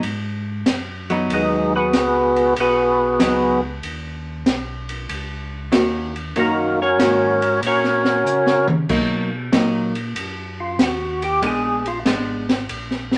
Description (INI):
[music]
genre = soul jazz organ trio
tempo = 95 BPM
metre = 4/4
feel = swing 68% on 8ths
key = unclear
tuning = A4 = 440 Hz
[part]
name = mellow tonewheel organ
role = bass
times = 0.0-13.2 s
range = Ab1 to Db3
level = -32 LUFS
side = equal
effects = overdrive, chorus vibrato, slow rotary speaker
[part]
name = open jazz drum kit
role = drums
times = 0.0-13.2 s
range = crash cymbal, hi-hat, kick drum, ride cymbal, snare drum, toms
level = -26 LUFS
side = equal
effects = none
[part]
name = archtop guitar, miked and amplified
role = accompaniment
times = 1.1-12.5 s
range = Eb3 to Gb4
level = -24 LUFS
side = equal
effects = none
[part]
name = percussive tonewheel organ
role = melody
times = 1.3-12.0 s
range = Ab3 to Db5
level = -20 LUFS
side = equal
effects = slow rotary speaker, overdrive
[sound]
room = wet small room reverb, RT60 0.6 s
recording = none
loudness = -20 LUFS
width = mono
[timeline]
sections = 0.0-13.2 A section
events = tonewheel organ solo 0.0-13.2; drum fill 8.3-8.9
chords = 0.0 Abm7; 8.9 Bmaj7; 11.4 Bb7b9